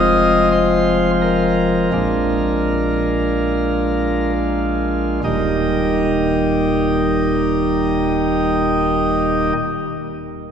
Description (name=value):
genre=classical, chorale-style piece for pipe organ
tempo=33-46 BPM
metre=4/4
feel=rubato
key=Eb major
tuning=A4 = 440 Hz
part: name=chamber organ, principal chorus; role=solo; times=0.0-9.5 s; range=Eb1 to Eb5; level=-15 LUFS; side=equal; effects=none
room=wet cathedral reverb, RT60 4.3 s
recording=recorded in a church or concert hall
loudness=-15 LUFS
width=side -7 dB against mid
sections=0.0-5.2 A section; 5.2-10.5 B section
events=slowing down 0.0-5.2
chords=0.0 Fm7; 1.9 Bb7; 5.2 Eb